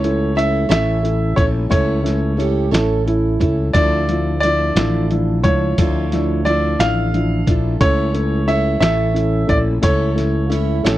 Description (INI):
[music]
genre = six-eight pop ballad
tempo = 59 BPM (dotted quarters)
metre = 6/8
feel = straight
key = unclear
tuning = A4 = 440 Hz
[part]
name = clear baby grand piano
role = melody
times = 0.0-10.6 s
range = C#5 to F5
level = -21 LUFS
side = right 1 dB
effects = none
[part]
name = dark upright piano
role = accompaniment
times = 0.0-11.0 s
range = F3 to E4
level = -21 LUFS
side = left 2 dB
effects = none
[part]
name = picked plugged-in steel-string acoustic guitar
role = arpeggios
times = 0.0-11.0 s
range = D3 to E5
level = -28 LUFS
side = right 10 dB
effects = none
[part]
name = fretless electric bass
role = bass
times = 0.0-11.0 s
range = A1 to D2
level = -19 LUFS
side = equal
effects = none
[part]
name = lo-fi sampler-style drum kit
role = drums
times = 0.0-11.0 s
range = hi-hat, kick drum, snare drum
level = -19 LUFS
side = equal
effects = none
[part]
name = mellow French horn section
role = second line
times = 2.4-3.6, 10.4-11.0 s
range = E4 to A4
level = -22 LUFS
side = right 7 dB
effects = none
[sound]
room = little or no reverb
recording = dry, close 1970s-style studio recording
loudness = -15 LUFS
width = side -14 dB against mid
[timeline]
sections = 0.0-11.0 A section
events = none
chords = 0.0 A; 3.7 Dmadd9; 7.8 A